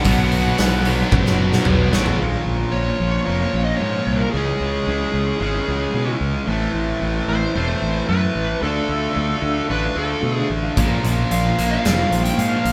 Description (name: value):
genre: quiet-loud alternative rock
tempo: 112 BPM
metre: 4/4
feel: straight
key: unclear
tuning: A4 = 439 Hz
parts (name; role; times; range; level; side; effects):
- smooth overdriven lead guitar; melody; 0.0-12.7 s; G#4 to G5; -27 LUFS; equal; none
- cranked stack guitar; riff; 0.0-2.2, 10.8-12.7 s; A#2 to B3; -28 LUFS; equal; overdrive
- distorted electric guitar; riff; 0.0-12.7 s; A2 to D4; -26 LUFS; equal; overdrive
- heavy high-gain guitar; riff; 0.0-2.2 s; B2 to D4; -30 LUFS; equal; distortion
- big rock drum kit; drums; 0.0-2.2, 10.8-12.7 s; hi-hat, kick drum, snare drum, toms; -24 LUFS; equal; none
- fuzz fingered electric bass; bass; 0.1-12.7 s; E1 to B2; -24 LUFS; equal; overdrive
- electric guitar at the edge of break-up; arpeggios; 2.2-12.7 s; A2 to E#4; -29 LUFS; equal; tremolo
room: light reverb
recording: band playing live in one room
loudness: -20 LUFS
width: mono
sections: 0.0-2.2 A section; 2.2-12.7 B section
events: drum fill 1.1-2.2; half time 2.2-12.7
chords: 0.1 Bm; 2.2 A#m; 4.3 C#m; 6.5 Am; 8.6 Dm; 10.8 A#m